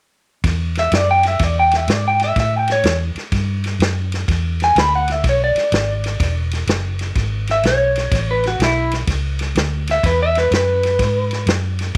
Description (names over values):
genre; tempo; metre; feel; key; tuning
electric blues shuffle; 125 BPM; 4/4; swing 66% on 8ths; E mixolydian; A4 = 440 Hz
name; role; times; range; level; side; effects
vintage muted fingered electric bass; bass; 0.4-12.0 s; E1 to A2; -23 LUFS; equal; none
vintage drum kit; drums; 0.4-12.0 s; kick drum, ride cymbal, snare drum; -24 LUFS; equal; none
electric guitar through a small old amp; melody; 0.8-11.5 s; E4 to B5; -19 LUFS; equal; lush chorus, slapback echo
room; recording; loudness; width
small room ambience; none; -18 LUFS; mono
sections
0.4-12.0 A section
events
none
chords
0.4 E; 2.4 A5; 4.3 E7; 8.1 A; 10.0 E